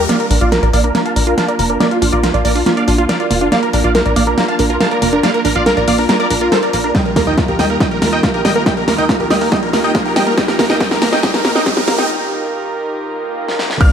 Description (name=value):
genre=uplifting trance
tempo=140 BPM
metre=4/4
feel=straight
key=Bb major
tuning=A4 = 441 Hz
part: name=big supersaw lead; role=melody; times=0.0-13.9 s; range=F4 to A5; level=-18 LUFS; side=equal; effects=phaser, sidechain pumping, low-pass filter, tape echo
part: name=warm symphonic string section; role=sustained chords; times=0.0-13.9 s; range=Eb3 to Bb4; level=-22 LUFS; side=equal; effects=sidechain pumping
part: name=wide unison pluck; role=arpeggios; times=0.0-13.8 s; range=G3 to D5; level=-18 LUFS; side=right 3 dB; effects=sidechain pumping, tape echo
part: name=tight sequencer bass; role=bass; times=0.0-12.1 s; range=F1 to Eb2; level=-19 LUFS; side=equal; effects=sidechain pumping
part: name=riser, swell and impact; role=sound effects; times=0.0-0.1, 8.8-13.9 s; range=none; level=-26 LUFS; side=equal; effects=none
part: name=big-room dance drum kit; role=drums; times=0.1-13.9 s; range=crash cymbal, hi-hat, ride cymbal, snare drum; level=-18 LUFS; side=left 1 dB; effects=low-pass filter on hats, low-pass filter on snare, low-pass filter on cymbals
part: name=electronic kick drum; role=drums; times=6.9-13.9 s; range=none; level=-18 LUFS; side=equal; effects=none
part: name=warm grand piano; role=second line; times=13.8-13.9 s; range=F6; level=-16 LUFS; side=right 2 dB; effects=sidechain pumping
room=light reverb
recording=high-pass filter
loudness=-12 LUFS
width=side -8 dB against mid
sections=0.1-13.8 A section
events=build-up 0.1-13.8; drum fill 0.1-12.1, 13.5-13.8; filter sweep on supersaw synth 0.1-13.8; filter sweep 0.1-13.8; riser 8.8-12.1; break 12.1-13.8; swell 13.1-13.8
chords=0.1 Bb; 6.9 Ebadd9